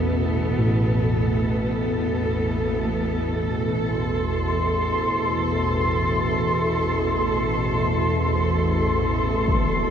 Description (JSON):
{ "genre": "dark ambient drone", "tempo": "free time", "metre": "none", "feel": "none", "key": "A minor", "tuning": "A4 = 440 Hz", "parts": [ { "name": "dark symphonic cello section", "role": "sustained chords", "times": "0.0-9.9 s", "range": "B2 to A4", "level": "-25 LUFS", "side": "right 1 dB", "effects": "none" }, { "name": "gamelan-type bossed gongs", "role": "arpeggios", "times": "0.0-6.2 s", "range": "E2 to B2", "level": "-28 LUFS", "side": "equal", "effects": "analog delay" }, { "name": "organ-like drone", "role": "drone", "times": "0.0-9.9 s", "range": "A1 to E2", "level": "-24 LUFS", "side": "equal", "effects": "ensemble chorus, built-in reverb" }, { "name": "flickering grainy texture", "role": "texture", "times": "4.0-9.9 s", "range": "C6", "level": "-26 LUFS", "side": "equal", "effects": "built-in reverb" }, { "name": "impact", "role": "percussion", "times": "9.5-9.7 s", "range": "none", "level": "-23 LUFS", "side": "left 1 dB", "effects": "low-pass filter on sfx" } ], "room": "wet plate reverb, RT60 2.6 s", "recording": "echo-heavy mix, cassette tape", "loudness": "-20 LUFS", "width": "side -8 dB against mid", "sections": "0.0-3.9 A section; 3.9-9.9 B section", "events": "none", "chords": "0.0 Asus2" }